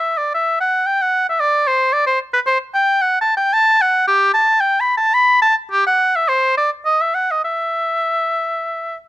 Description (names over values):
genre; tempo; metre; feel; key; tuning
classical, baroque-style fantasia for unaccompanied oboe; 93-115 BPM; 3/4; rubato; E minor; A4 = 440 Hz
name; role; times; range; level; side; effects
clear oboe; solo; 0.0-9.0 s; G4 to B5; -14 LUFS; equal; none
room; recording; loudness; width
little or no reverb; close, detailed microphones; -14 LUFS; side -16 dB against mid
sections
0.0-9.1 A section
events
none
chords
none